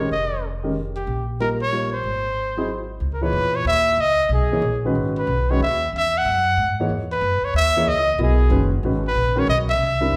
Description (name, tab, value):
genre	modal jazz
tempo	186 BPM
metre	3/4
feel	swing 64% on 8ths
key	C# dorian from 3.0 s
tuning	A4 = 442 Hz
part	warm trumpet	melody	0.0-10.2 s	G4 to F#5	-23 LUFS	equal	none
part	warm concert grand piano	accompaniment	0.0-10.1 s	A#2 to D#5	-27 LUFS	equal	none
part	upright bass	bass	0.0-10.2 s	F1 to G#2	-26 LUFS	equal	none
room	wet recital hall reverb, RT60 1.3 s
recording	recorded in a church or concert hall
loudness	-21 LUFS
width	mono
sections	0.0-3.0 A section; 3.0-10.2 B section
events	none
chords	0.0 Bbm11; 1.1 Ebadd9/Bb; 2.0 Ab; 3.0 C#m11